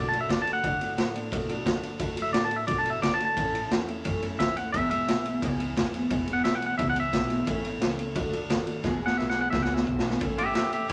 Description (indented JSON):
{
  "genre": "rockabilly",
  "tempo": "175 BPM",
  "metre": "4/4",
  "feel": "straight",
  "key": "A major",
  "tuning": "A4 = 440 Hz",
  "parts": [
    { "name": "twangy electric guitar", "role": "melody", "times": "0.0-10.9 s", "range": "E4 to A5", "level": "-30 LUFS", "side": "equal", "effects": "none" },
    { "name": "picked steel-string acoustic guitar", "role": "accompaniment", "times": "0.0-10.9 s", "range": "E2 to G#4", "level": "-34 LUFS", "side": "equal", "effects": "none" },
    { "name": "upright bass", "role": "bass", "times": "0.0-10.9 s", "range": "E1 to D3", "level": "-40 LUFS", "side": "equal", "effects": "none" },
    { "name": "raw garage drum kit", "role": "drums", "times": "0.1-10.9 s", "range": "kick drum, ride cymbal, snare drum", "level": "-31 LUFS", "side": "equal", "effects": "none" }
  ],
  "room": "moderate studio reverb, RT60 0.5 s",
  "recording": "none",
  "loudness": "-27 LUFS",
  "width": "mono",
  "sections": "0.0-10.2 A section",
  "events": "drum fill 8.8-10.2",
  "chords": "0.0 D; 3.4 A; 4.7 E; 7.5 A; 8.2 D; 8.8 E; 10.2 A",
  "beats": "0.29 | 0.64 0.98 1.32 1.66 | 2.01 2.35 2.69 3.03 | 3.37 3.72 4.06 4.40 | 4.74 5.08 5.43 5.77 | 6.11 6.45 6.79 7.14 | 7.48 7.82 8.16 8.50 | 8.85 9.19 9.53 9.87 | 10.22 10.56 10.90"
}